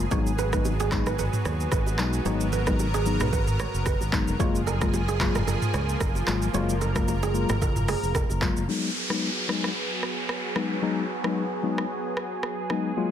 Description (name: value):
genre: afrobeats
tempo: 112 BPM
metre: 4/4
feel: swing 55% on 16ths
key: G# dorian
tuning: A4 = 438 Hz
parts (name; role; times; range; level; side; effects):
- mellow tine electric piano; accompaniment; 0.0-13.1 s; F#3 to E#4; -28 LUFS; left 6 dB; low-pass filter
- lush unison pad; sustained chords; 0.0-13.1 s; E#3 to A#4; -32 LUFS; right 1 dB; chorus, low-pass filter
- fingered electric bass; bass; 0.0-8.7 s; E#1 to D#2; -28 LUFS; equal; none
- kora; riff; 0.1-8.4 s; G#4 to C#5; -32 LUFS; right 8 dB; ping-pong delay
- afro-pop drum kit; drums; 0.1-12.8 s; handclaps, hi-hat, kick drum, rim click, shaker, toms; -28 LUFS; equal; soft clipping on snare
- congas and bongos; percussion; 0.1-8.4 s; none; -38 LUFS; right 7 dB; none
- downlifter; sound effects; 8.7-13.0 s; none; -32 LUFS; equal; none
room: light reverb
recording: dense, heavily limited modern master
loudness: -23 LUFS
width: side -9 dB against mid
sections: 0.0-8.7 A section; 8.7-13.1 B section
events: filter sweep 8.7-13.1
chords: 0.1 G#m7; 4.4 F#maj9; 8.7 G#m7